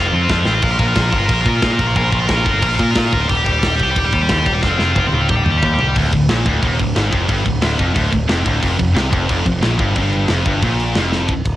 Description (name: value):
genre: heavy metal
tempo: 180 BPM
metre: 4/4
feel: straight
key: unclear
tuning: A4 = 438 Hz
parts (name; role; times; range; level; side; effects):
- heavy high-gain guitar; riff; 0.0-11.3 s; D2 to Bb4; -17 LUFS; equal; distortion, cassette tape
- growling picked electric bass; bass; 0.0-11.6 s; D1 to Bb2; -18 LUFS; equal; overdrive
- tight metal drum kit; drums; 0.3-11.5 s; crash cymbal, kick drum, ride cymbal, snare drum, toms; -20 LUFS; equal; none
room: little or no reverb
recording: home recording on cassette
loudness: -14 LUFS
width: side -14 dB against mid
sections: 0.0-6.0 A section; 6.0-11.3 B section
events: drum fill 0.0-0.6, 4.6-6.0, 11.1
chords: 0.0 F; 0.6 Bb5; 3.3 Eb; 4.6 F5; 5.3 Eb; 6.0 Dm; 8.6 F5